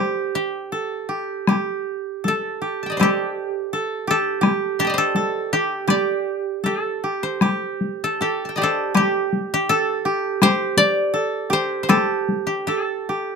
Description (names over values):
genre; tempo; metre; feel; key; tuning
japanese traditional, Japanese chamber music; 74-86 BPM; 2/4; rubato; unclear; A4 = 440 Hz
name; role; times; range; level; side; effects
koto; melody; 0.0-13.4 s; G4 to C6; -22 LUFS; left 2 dB; none
koto; second line; 0.0-13.4 s; G4 to A4; -23 LUFS; right 4 dB; none
solo taiko drums; percussion; 1.5-12.5 s; none; -20 LUFS; left 3 dB; none
room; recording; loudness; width
light reverb; close, detailed microphones; -19 LUFS; side -5 dB against mid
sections
0.0-7.4 A section; 7.4-13.4 B section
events
none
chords
none